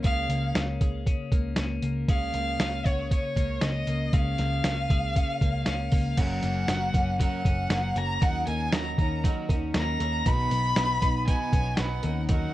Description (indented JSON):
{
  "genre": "jangly indie pop",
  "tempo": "118 BPM",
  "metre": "4/4",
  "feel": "straight",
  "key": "unclear",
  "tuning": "A4 = 440 Hz",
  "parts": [
    { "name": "warm violin", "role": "melody", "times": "0.0-12.5 s", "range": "Db5 to B5", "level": "-30 LUFS", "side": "equal", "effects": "digital delay" },
    { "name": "twelve-string electric guitar", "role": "arpeggios", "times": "0.0-12.5 s", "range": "Gb2 to Ab4", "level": "-33 LUFS", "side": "left 4 dB", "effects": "none" },
    { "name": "vintage muted picked electric bass", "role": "bass", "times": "0.0-12.5 s", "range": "Gb1 to Eb2", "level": "-30 LUFS", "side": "equal", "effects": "none" },
    { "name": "lo-fi sampler-style drum kit", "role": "drums", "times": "0.0-12.4 s", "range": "crash cymbal, hi-hat, kick drum, snare drum", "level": "-26 LUFS", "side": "equal", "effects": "none" },
    { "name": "fingerpicked twelve-string acoustic guitar", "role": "accompaniment", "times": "6.2-12.5 s", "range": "Gb2 to B4", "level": "-34 LUFS", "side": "right 5 dB", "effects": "none" }
  ],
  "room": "light reverb",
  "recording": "worn, warbling old tape, cassette tape, warbly pitch drift",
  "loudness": "-24 LUFS",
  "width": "side -15 dB against mid",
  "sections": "0.0-6.2 A section; 6.2-12.5 B section",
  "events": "none",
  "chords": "0.0 Db6; 6.2 Gb; 8.2 Ebm7; 10.3 B"
}